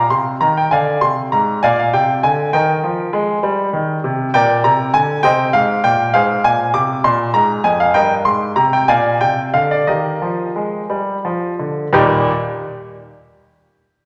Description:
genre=classical-period piano sonatina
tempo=57-68 BPM (dotted quarters)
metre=6/8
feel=rubato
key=Eb major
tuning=A4 = 440 Hz
part: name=clear baby grand piano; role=solo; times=0.0-12.3 s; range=Eb2 to D6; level=-16 LUFS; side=equal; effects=none
room=wet recital hall reverb, RT60 1.7 s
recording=none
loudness=-16 LUFS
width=mono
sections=0.0-11.9 A section; 11.9-13.9 B section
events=slowing down 7.0-11.9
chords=0.0 N.C.; 0.7 Bb7; 2.5 Eb; 4.3 Bb13; 5.2 Cm; 6.1 Ab69; 7.0 Bb5; 7.9 Eb/G; 8.9 Bb; 9.9 Eb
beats=| 0.71 1.63 | 2.54 3.43 | 4.35 5.24 | 6.14 7.04 | 7.94 8.88 | 9.87 10.90 | 11.93

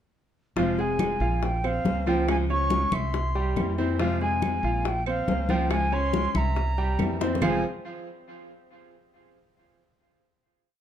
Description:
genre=latin, Cuban son and guajira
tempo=140 BPM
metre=4/4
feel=straight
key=F harmonic minor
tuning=A4 = 435 Hz
part: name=silver concert flute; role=melody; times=0.6-7.6 s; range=F5 to Db6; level=-29 LUFS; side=equal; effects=none
part: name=nylon-string guitar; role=accompaniment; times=0.6-7.6 s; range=F2 to C5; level=-31 LUFS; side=left 8 dB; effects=none
part: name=bright grand piano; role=arpeggios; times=0.6-7.6 s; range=F3 to F5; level=-29 LUFS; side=right 4 dB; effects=tape echo
part: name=upright bass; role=bass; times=0.6-7.6 s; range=F1 to F2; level=-28 LUFS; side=equal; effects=none
part: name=bongos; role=percussion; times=0.6-7.5 s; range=none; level=-34 LUFS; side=left 7 dB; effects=none
part: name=congas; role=percussion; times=0.6-7.5 s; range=none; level=-31 LUFS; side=left 1 dB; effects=none
part: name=claves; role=percussion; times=1.0-7.5 s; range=none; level=-40 LUFS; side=right 12 dB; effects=none
room=moderate large studio reverb, RT60 0.8 s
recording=dark, warm production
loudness=-23 LUFS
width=side -10 dB against mid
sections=0.6-7.4 montuno (vamp); 7.4-9.1 final chord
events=drum fill 7.2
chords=0.6 Fm; 1.4 Bbmadd9; 2.3 Db; 3.1 C7; 4.0 Fm; 4.9 Bbmadd9; 5.7 Db; 6.6 C7; 7.4 Fm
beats=| 0.57 1.00 1.43 1.86 | 2.29 2.71 3.14 3.57 | 4.00 4.43 4.85 5.28 | 5.71 6.14 6.57 7.00 | 7.42

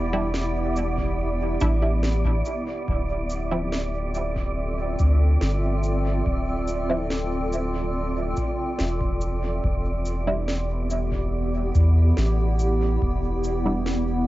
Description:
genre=ambient dub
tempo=71 BPM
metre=4/4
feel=straight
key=D dorian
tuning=A4 = 438 Hz
part: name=granular cloud pad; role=sustained chords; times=0.0-14.3 s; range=B3 to E5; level=-28 LUFS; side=equal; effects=built-in reverb, cassette tape, plate reverb
part: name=soft dub sub bass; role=bass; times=0.0-14.3 s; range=D1 to E2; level=-24 LUFS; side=equal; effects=none
part: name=wind-like tuned noise texture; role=texture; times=0.0-14.3 s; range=D5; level=-34 LUFS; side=right 3 dB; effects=built-in reverb, cassette tape
part: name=filtered dub chord stab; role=stabs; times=0.1-13.8 s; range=F3 to E4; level=-29 LUFS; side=right 1 dB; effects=phaser, cassette tape, dub echo, plate reverb
part: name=electronic snare drum and cabasa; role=drums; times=0.3-14.0 s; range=none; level=-34 LUFS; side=equal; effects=overdrive, small room reverb, cassette tape, dub echo
part: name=electronic kick drum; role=drums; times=1.0-13.2 s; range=none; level=-29 LUFS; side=equal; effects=small room reverb, cassette tape
room=light reverb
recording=home recording on cassette, nothing above 7.7 kHz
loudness=-22 LUFS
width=side -16 dB against mid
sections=0.0-14.3 A section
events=none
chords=0.0 Em7; 2.9 Dm9; 9.6 Em7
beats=0.34 1.19 2.03 | 2.88 3.72 4.57 5.41 | 6.26 7.10 7.95 8.79 | 9.64 10.48 11.33 12.17 | 13.02 13.87

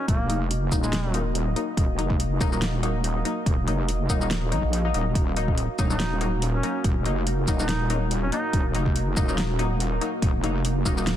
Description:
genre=deep dubstep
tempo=142 BPM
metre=4/4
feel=swing 55% on 16ths, half-time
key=Eb minor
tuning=A4 = 440 Hz
part: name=warm duduk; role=melody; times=0.0-1.3, 5.9-8.7 s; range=Ab3 to Eb4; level=-32 LUFS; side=right 1 dB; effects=dub echo
part: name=deep dark ambient pad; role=sustained chords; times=0.0-11.2 s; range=Bb3 to Eb5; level=-33 LUFS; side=left 1 dB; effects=chorus, built-in reverb
part: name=wobble bass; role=bass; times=0.1-11.2 s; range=Eb1 to Bb1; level=-25 LUFS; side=equal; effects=chorus
part: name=deep house drum kit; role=drums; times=0.1-11.2 s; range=hi-hat, shaker, snare drum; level=-31 LUFS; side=equal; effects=none
part: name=electronic kick drum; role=drums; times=0.1-11.0 s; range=none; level=-24 LUFS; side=equal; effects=none
part: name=filtered dub chord stab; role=stabs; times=0.3-11.1 s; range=Gb3 to Eb4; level=-30 LUFS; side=left 3 dB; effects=lush chorus, dub echo
room=little or no reverb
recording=dense, heavily limited modern master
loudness=-22 LUFS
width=side -11 dB against mid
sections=0.0-11.2 A section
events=none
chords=0.0 Ebm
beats=| 0.08 0.51 0.93 1.35 | 1.77 2.20 2.62 3.04 | 3.46 3.89 4.31 4.73 | 5.15 5.58 6.00 6.42 | 6.84 7.27 7.69 8.11 | 8.53 8.96 9.38 9.80 | 10.22 10.65 11.07

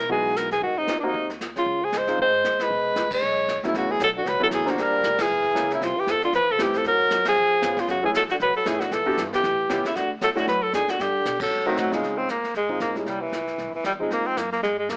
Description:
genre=jazz, small-group swing and bop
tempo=231 BPM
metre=4/4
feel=swing 58% on 8ths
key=unclear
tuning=A4 = 440 Hz
part: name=breathy alto saxophone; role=melody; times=0.0-15.0 s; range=D#3 to Db5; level=-25 LUFS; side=equal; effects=none
part: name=growling trombone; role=second line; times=0.0-11.9 s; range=Bb2 to G#3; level=-33 LUFS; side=equal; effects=none
part: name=upright bass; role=bass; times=0.0-15.0 s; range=E1 to B2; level=-43 LUFS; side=equal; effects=none
part: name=warm baby grand piano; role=accompaniment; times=0.1-14.3 s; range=A2 to C5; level=-30 LUFS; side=equal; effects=none
part: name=jazz brush drum kit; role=drums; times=0.1-15.0 s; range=brushed snare drum, hi-hat, kick drum, ride cymbal, snare drum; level=-36 LUFS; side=equal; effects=none
room=light reverb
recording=AM radio sound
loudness=-23 LUFS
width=mono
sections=0.0-3.7 A section; 3.7-12.0 B section; 12.0-15.0 A section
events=band accent 3.1, 5.2, 7.2, 11.4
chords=0.0 Emaj7; 0.6 Ab; 1.7 Dbmaj9; 2.7 E7; 3.7 A6; 4.8 Gm7; 5.3 F#9; 5.8 Fmaj7; 6.8 F#add9; 7.4 C#7; 7.9 F#m7; 8.9 Em7; 9.4 A7; 10.0 D; 11.0 G; 11.5 G#7b9; 12.0 Dbmaj9; 13.1 C7b9; 14.1 Fm7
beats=0.10 0.36 | 0.62 0.88 1.14 1.40 | 1.66 1.92 2.18 2.44 | 2.70 2.96 3.22 3.48 | 3.74 4.00 4.26 4.51 | 4.78 5.03 5.29 5.55 | 5.81 6.07 6.33 6.59 | 6.85 7.11 7.37 7.63 | 7.88 8.14 8.40 8.66 | 8.92 9.18 9.44 9.70 | 9.96 10.22 10.47 10.73 | 10.99 11.25 11.51 11.77 | 12.03 12.29 12.55 12.81 | 13.07 13.33 13.59 13.85 | 14.11 14.37 14.63 14.89

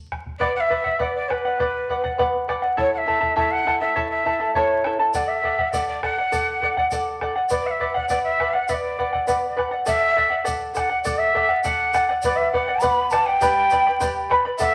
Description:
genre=andean folk, Andean ensemble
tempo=101 BPM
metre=2/4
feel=straight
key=B minor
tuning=A4 = 440 Hz
part: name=bombo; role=percussion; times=0.1-14.7 s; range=none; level=-36 LUFS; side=equal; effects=none
part: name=breathy mellow quena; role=melody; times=0.4-14.7 s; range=B4 to B5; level=-24 LUFS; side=equal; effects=none
part: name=charango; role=accompaniment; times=0.4-14.7 s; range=E4 to B5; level=-25 LUFS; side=equal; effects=none
part: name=tube shaker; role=percussion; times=5.1-14.7 s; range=none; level=-41 LUFS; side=equal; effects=none
room=wet studio reverb, RT60 0.9 s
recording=vinyl crackle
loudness=-21 LUFS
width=mono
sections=0.4-9.9 A section; 9.9-14.7 B section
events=none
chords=0.4 Bm; 2.8 A; 5.1 D; 7.5 Bm; 9.9 D; 12.2 Bm; 13.4 G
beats=| 0.41 1.00 | 1.59 2.18 | 2.77 3.37 | 3.96 4.55 | 5.14 5.73 | 6.32 6.92 | 7.51 8.10 | 8.69 9.28 | 9.87 10.46 | 11.06 11.65 | 12.24 12.83 | 13.42 14.01 | 14.60

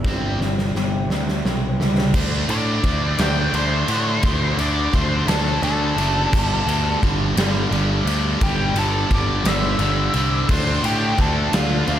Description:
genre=quiet-loud alternative rock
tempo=58 BPM (dotted quarters)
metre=6/8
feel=straight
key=unclear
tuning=A4 = 441 Hz
part: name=electric guitar through a small old amp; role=arpeggios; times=0.0-2.1 s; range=G3 to G4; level=-28 LUFS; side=equal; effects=wide subtle chorus, slapback echo
part: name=distorted electric guitar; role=riff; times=0.0-12.0 s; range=G2 to D4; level=-23 LUFS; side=equal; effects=overdrive
part: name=fuzz picked electric bass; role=bass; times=0.0-12.0 s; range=F#1 to A2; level=-22 LUFS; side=equal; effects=overdrive
part: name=big rock drum kit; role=drums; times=0.0-12.0 s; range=crash cymbal, kick drum, ride cymbal, snare drum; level=-23 LUFS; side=equal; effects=none
part: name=octave-fuzz lead guitar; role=melody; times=2.5-12.0 s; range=F4 to G5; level=-25 LUFS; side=equal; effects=distortion, slapback echo
room=moderate lush hall reverb, RT60 1.9 s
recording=big arena sound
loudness=-17 LUFS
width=side -10 dB against mid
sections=0.0-2.1 A section; 2.1-12.0 B section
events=drum fill 0.0-2.1; lead electric guitar solo 2.1-12.0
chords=0.0 C/G; 2.1 D5; 6.3 G5; 10.5 Dm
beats=| 0.05 1.10 | 2.15 3.20 | 4.24 5.29 | 6.33 7.37 | 8.41 9.46 | 10.49 11.53

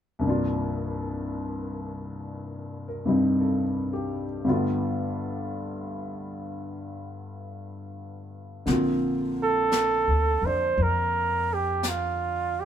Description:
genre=jazz ballad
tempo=57 BPM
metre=4/4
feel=swing 67% on 8ths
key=Bb major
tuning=A4 = 442 Hz
part: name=warm grand piano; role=accompaniment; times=0.2-12.7 s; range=C2 to Bb4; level=-27 LUFS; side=left 1 dB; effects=none
part: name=upright bass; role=bass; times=8.7-12.7 s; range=Bb1 to F2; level=-30 LUFS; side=left 1 dB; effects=none
part: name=jazz brush drum kit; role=drums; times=8.7-12.7 s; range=brushed snare drum, hi-hat, snare drum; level=-33 LUFS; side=left 3 dB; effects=none
part: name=trumpet with bucket mute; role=melody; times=9.4-12.7 s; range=F4 to C5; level=-24 LUFS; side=right 4 dB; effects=none
room=light reverb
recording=band playing live in one room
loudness=-24 LUFS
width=side -9 dB against mid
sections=0.2-8.7 A section; 8.7-12.7 B section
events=none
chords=0.2 Cm11; 4.4 G9; 8.7 Bbmaj9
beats=| 0.23 1.29 2.34 3.40 | 4.45 5.50 6.55 7.60 | 8.66 9.71 10.77 11.82

